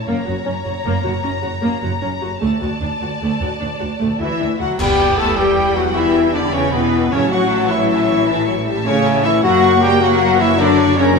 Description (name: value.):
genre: cinematic, heroic adventure film score.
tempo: 103 BPM (dotted quarters).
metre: 12/8.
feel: straight.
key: E dorian.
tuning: A4 = 441 Hz.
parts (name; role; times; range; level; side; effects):
warm symphonic violin section; melody; 0.0-11.2 s; B4 to A#5; -24 LUFS; left 4 dB; none.
rich studio violin section; second line; 0.0-11.2 s; G4 to C#6; -25 LUFS; left 3 dB; none.
rich symphonic viola section; accompaniment; 0.1-11.2 s; E3 to F#4; -22 LUFS; right 1 dB; none.
clear symphonic double bass section; bass; 0.1-11.2 s; F#1 to E2; -24 LUFS; right 2 dB; none.
rich symphonic cello section; bass; 0.1-11.2 s; D2 to A3; -23 LUFS; right 2 dB; none.
hollow concert flute; second line; 4.2-11.2 s; B4 to A5; -25 LUFS; left 5 dB; none.
warm clarinet; second line; 4.2-11.2 s; B3 to A4; -24 LUFS; left 2 dB; none.
mellow French horn section; sustained chords; 4.2-11.2 s; B3 to A4; -19 LUFS; left 7 dB; none.
dark trumpet; stabs; 4.2-11.2 s; B3 to A4; -22 LUFS; right 2 dB; none.
clash cymbals and concert bass drum; percussion; 4.8-5.5 s; none; -25 LUFS; equal; none.
room: wet scoring stage reverb, RT60 1.6 s.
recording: none.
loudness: -14 LUFS.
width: side -4 dB against mid.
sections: 0.0-4.8 A section; 4.8-11.2 B section.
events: band accent 4.8-5.2.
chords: 0.1 F#; 2.4 D; 4.8 Em; 7.1 A; 9.4 F#.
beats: | 0.08 0.66 1.24 1.83 | 2.42 3.01 3.61 4.20 | 4.79 5.38 5.96 6.54 | 7.12 7.70 8.28 8.86 | 9.44 10.02 10.59 11.17.